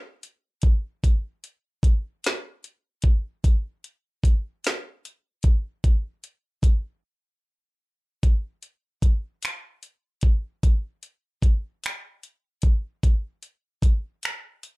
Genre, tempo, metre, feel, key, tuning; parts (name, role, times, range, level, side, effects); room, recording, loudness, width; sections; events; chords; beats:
R&B; 50 BPM (dotted quarters); 6/8; straight
smooth R&B drum kit; drums; 0.2-14.8 s; finger snaps, hi-hat, kick drum, snare drum; -20 LUFS; equal
little or no reverb; -22 LUFS; side -25 dB against mid
0.0-8.2 A section; 8.2-14.8 B section
break 7.0-8.2
| 1.03 2.23 | 3.43 4.63 | 5.83 7.03 | 8.23 9.43 | 10.63 11.83 | 13.03 14.23